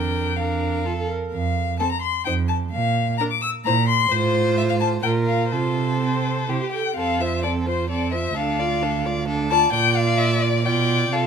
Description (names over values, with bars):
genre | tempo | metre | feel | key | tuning
quick classical-period movement for string quartet | 129 BPM | 3/4 | straight | F major | A4 = 437 Hz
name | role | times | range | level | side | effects
rich violin | melody | 0.0-11.3 s | C5 to E6 | -23 LUFS | left 7 dB | none
rich violin | second line | 0.0-11.3 s | G4 to D5 | -27 LUFS | left 2 dB | none
rich viola | accompaniment | 0.0-11.3 s | C4 to Bb4 | -27 LUFS | right 5 dB | none
rich cello | bass | 0.0-11.3 s | D2 to C3 | -24 LUFS | right 5 dB | none
room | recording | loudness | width
light reverb | close, detailed microphones | -19 LUFS | side -7 dB against mid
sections
0.0-7.0 A section; 7.0-11.3 B section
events
none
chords
0.0 Bb/F; 0.8 F; 2.3 N.C.; 2.7 Bb5; 3.7 C7(no3)/Bb; 4.1 F/A; 5.0 Gm7/Bb (rootless); 5.5 F/C; 6.5 C; 7.0 F; 8.4 Dm; 9.7 Bb6; 10.7 Bdim